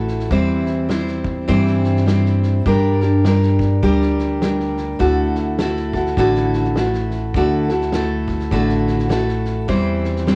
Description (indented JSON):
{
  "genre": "acoustic folk duo or small band",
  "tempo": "102 BPM",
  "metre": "4/4",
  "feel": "swing 60% on 8ths",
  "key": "D mixolydian",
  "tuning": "A4 = 439 Hz",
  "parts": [
    { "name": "picked steel-string acoustic guitar", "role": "accompaniment", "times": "0.0-10.4 s", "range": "D3 to C5", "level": "-20 LUFS", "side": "equal", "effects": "cassette tape" },
    { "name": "upright bass", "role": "bass", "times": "0.0-10.4 s", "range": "A1 to G2", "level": "-23 LUFS", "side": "equal", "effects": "none" },
    { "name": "loose indie drum kit", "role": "drums", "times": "0.1-10.4 s", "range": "kick drum, snare drum", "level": "-30 LUFS", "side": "equal", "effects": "cassette tape" }
  ],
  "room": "moderate small room reverb, RT60 0.6 s",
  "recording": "home recording on cassette",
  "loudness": "-18 LUFS",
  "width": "mono",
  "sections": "0.0-10.4 A section",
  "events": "none",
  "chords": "0.3 C/E; 2.7 Gm; 5.0 Dadd9; 9.7 C/E"
}